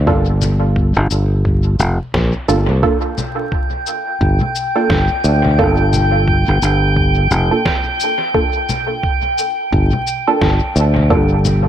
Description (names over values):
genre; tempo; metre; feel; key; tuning
ambient dub; 87 BPM; 4/4; swing 59% on 16ths; G minor; A4 = 440 Hz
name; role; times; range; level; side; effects
fingered electric bass; bass; 0.0-11.7 s; F1 to D2; -14 LUFS; equal; tube saturation
filtered dub chord stab; stabs; 0.1-11.3 s; Bb3 to A4; -20 LUFS; right 3 dB; chorus, dub echo
electronic kick drum; drums; 0.1-11.3 s; none; -20 LUFS; equal; studio reverb
electronic congas, shaker and snare drum; drums; 0.4-11.6 s; none; -24 LUFS; left 2 dB; studio reverb, dub echo
drifting glass-harmonics texture; texture; 3.3-11.7 s; G5; -19 LUFS; right 1 dB; chorus, built-in reverb
room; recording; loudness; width
light reverb; echo-heavy mix, vinyl crackle; -13 LUFS; side -10 dB against mid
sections
0.0-11.7 A section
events
none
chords
0.0 Gm7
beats
| 0.07 0.76 1.45 2.14 | 2.83 3.52 4.21 4.90 | 5.59 6.28 6.97 7.66 | 8.35 9.04 9.73 10.41 | 11.11